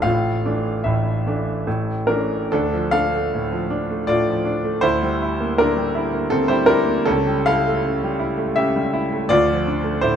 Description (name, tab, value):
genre	classical, romantic character piece for solo piano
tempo	69-84 BPM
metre	3/4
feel	rubato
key	D minor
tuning	A4 = 440 Hz
part	warm concert grand piano	solo	0.0-10.2 s	A1 to F5	-18 LUFS	equal	none
room	moderate recital hall reverb, RT60 1.7 s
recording	close, detailed microphones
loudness	-18 LUFS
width	side -8 dB against mid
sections	0.0-2.5 A section; 2.5-10.2 B section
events	none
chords	0.0 Asus4; 1.7 A; 2.5 Dm; 4.8 Em7b5/D; 7.1 A7/C#; 9.3 Dm